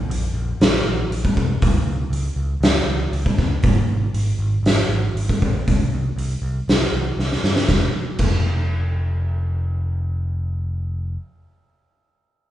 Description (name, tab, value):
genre	quiet-loud alternative rock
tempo	119 BPM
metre	4/4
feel	straight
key	unclear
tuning	A4 = 439 Hz
part	overdriven picked electric bass	bass	0.1-11.2 s	F1 to G2	-22 LUFS	equal	none
part	oversized low-tuned drum kit	drums	0.1-8.3 s	crash cymbal, hi-hat, kick drum, snare drum	-19 LUFS	equal	none
room	light reverb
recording	band playing live in one room, nothing above 10.3 kHz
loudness	-18 LUFS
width	side -12 dB against mid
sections	0.0-7.7 A section; 7.7-11.7 B section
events	drum fill 7.2-7.7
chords	none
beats	0.10 0.61 1.11 | 1.62 2.12 2.63 3.14 | 3.64 4.15 4.66 5.16 | 5.67 6.18 6.68 7.19 | 7.69 8.20 8.71 9.21 | 9.72 10.22 10.72